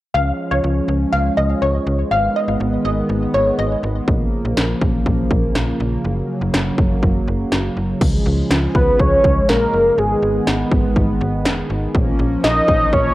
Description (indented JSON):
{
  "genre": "synth-pop",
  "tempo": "122 BPM",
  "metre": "4/4",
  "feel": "straight",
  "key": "Db mixolydian",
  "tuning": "A4 = 439 Hz",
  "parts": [
    { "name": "wide unison pluck", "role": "second line", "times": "0.1-3.9 s", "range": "Db5 to F5", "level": "-20 LUFS", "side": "left 1 dB", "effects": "auto-pan, cassette tape, analog delay" },
    { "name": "chorused pulse-width pad", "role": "sustained chords", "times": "0.1-13.1 s", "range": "Db3 to Db4", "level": "-21 LUFS", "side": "right 1 dB", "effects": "cassette tape" },
    { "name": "slap-like FM bass", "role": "bass", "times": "0.1-13.1 s", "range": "F1 to Db2", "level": "-22 LUFS", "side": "equal", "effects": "none" },
    { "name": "industrial drum kit", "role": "drums", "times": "4.1-13.0 s", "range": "crash cymbal, kick drum, snare drum", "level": "-18 LUFS", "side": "equal", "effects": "none" },
    { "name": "fat analog lead", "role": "melody", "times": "8.8-13.1 s", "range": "Ab4 to Eb5", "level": "-15 LUFS", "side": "equal", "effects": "cassette tape" }
  ],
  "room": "moderate spring reverb, RT60 2.0 s",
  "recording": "home recording on cassette",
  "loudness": "-15 LUFS",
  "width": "side -16 dB against mid",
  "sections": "0.1-8.0 A section; 8.0-13.1 B section",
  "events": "none",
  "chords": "0.1 Db; 2.1 Abm; 4.1 Bbm; 6.0 Gb; 8.0 Db; 10.0 Abm; 11.9 Bbm",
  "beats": "| 0.14 0.64 1.13 1.62 | 2.11 2.60 3.10 3.59 | 4.08 4.57 5.06 5.55 | 6.04 6.54 7.03 7.52 | 8.01 8.50 9.00 9.49 | 9.98 10.47 10.96 11.46 | 11.95 12.44 12.93"
}